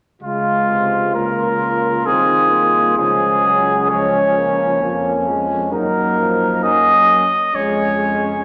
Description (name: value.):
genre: classical, brass quintet.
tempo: 66 BPM.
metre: 3/4.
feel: straight.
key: Db major.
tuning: A4 = 440 Hz.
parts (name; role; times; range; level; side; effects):
warm trumpet; melody; 0.2-8.4 s; F4 to Eb5; -18 LUFS; equal; none.
warm flugelhorn; second line; 0.2-8.4 s; Db4 to F4; -25 LUFS; equal; none.
mellow French horn; accompaniment; 0.2-8.4 s; F3 to C4; -27 LUFS; equal; none.
warm trombone; accompaniment; 0.2-8.4 s; C3 to Bb3; -28 LUFS; equal; none.
mellow tuba; bass; 0.2-8.4 s; C2 to Gb2; -31 LUFS; equal; none.
room: wet scoring stage reverb, RT60 1.6 s.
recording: none.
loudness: -16 LUFS.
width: mono.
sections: 0.2-8.4 A section.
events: none.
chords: 0.2 Db; 2.1 Ab/C; 3.0 Db; 5.7 Gb; 7.5 Db/F.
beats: | 0.22 1.16 2.07 | 2.98 3.91 4.82 | 5.72 6.64 7.55 | 8.45.